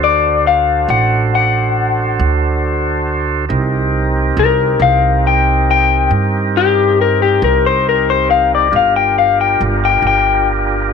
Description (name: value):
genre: slow blues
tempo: 46 BPM (dotted quarters)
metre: 12/8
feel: straight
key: unclear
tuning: A4 = 445 Hz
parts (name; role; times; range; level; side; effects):
- electric guitar through a small old amp; melody; 0.0-10.5 s; G4 to G5; -13 LUFS; left 9 dB; none
- tonewheel organ; sustained chords; 0.0-10.9 s; C4 to C5; -18 LUFS; right 2 dB; slow rotary speaker, overdrive
- upright bass; bass; 0.0-10.9 s; G1 to G2; -17 LUFS; right 3 dB; none
room: light reverb, small room ambience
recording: none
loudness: -11 LUFS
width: side -6 dB against mid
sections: 0.0-10.9 A section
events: clean electric guitar solo 0.0-10.9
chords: 0.0 D7; 3.5 Cm7; 8.7 Gm7